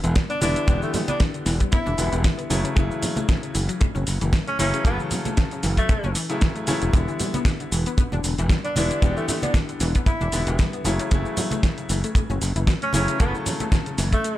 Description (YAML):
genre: nu-disco, nu disco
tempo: 115 BPM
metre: 4/4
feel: swing 55% on 16ths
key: unclear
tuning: A4 = 440 Hz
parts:
  - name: bright grand piano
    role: accompaniment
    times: 0.0-14.4 s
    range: C#3 to A4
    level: -29 LUFS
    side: left 2 dB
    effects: ping-pong delay
  - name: analog pluck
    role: arpeggios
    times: 0.0-14.3 s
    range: C#3 to D4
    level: -31 LUFS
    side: left 3 dB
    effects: chorus, sidechain pumping, dub echo
  - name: modern bright fingered electric bass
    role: bass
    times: 0.0-14.1 s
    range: E1 to F#1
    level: -25 LUFS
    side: equal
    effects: none
  - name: pop drum kit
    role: drums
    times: 0.0-14.4 s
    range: hi-hat, shaker, snare drum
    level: -29 LUFS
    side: equal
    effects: none
  - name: kick drum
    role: drums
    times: 0.2-14.2 s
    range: none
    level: -21 LUFS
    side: equal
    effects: none
  - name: warm tenor saxophone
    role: melody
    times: 0.3-14.4 s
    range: A3 to E4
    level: -28 LUFS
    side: right 1 dB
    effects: dub echo
  - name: congas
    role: percussion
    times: 0.4-13.7 s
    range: none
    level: -29 LUFS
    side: right 3 dB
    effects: none
room: small room ambience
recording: none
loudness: -20 LUFS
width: side -14 dB against mid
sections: 0.0-14.4 A section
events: none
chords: 0.0 Em7; 2.5 F#m7; 6.9 Em7; 10.9 F#m7